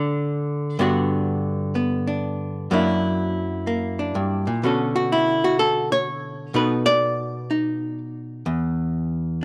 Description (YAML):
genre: solo jazz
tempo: 125 BPM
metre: 4/4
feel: swing 66% on 8ths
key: unclear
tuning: A4 = 438 Hz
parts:
  - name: archtop guitar, miked and amplified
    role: solo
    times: 0.0-9.4 s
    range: E2 to D5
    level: -23 LUFS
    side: equal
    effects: none
room: light reverb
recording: dry, close 1970s-style studio recording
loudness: -23 LUFS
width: mono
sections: 0.0-9.4 A section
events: none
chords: 0.0 N.C.; 0.8 Gmaj7; 2.7 F#7b13; 4.6 Bm9; 6.5 B7#9; 8.5 N.C.